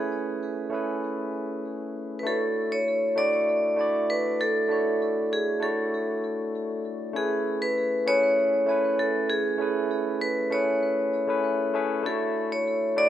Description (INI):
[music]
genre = chillout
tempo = 98 BPM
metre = 4/4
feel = straight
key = D lydian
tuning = A4 = 442 Hz
[part]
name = vibraphone with hard mallets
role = melody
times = 0.0-13.1 s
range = G#4 to D5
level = -25 LUFS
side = equal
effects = digital delay
[part]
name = barky tine electric piano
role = accompaniment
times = 0.0-13.1 s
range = A3 to G#5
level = -28 LUFS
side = moving between left 4 dB and right 6 dB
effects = auto-pan
[sound]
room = moderate plate reverb, RT60 3.5 s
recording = rough home demo mix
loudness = -24 LUFS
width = side -11 dB against mid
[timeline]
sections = 0.0-2.3 A section; 2.3-13.1 B section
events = filter sweep on tine electric piano 0.0-2.3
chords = 0.0 Amaj9; 2.3 Dmaj9; 7.2 Amaj9; 12.1 Dmaj9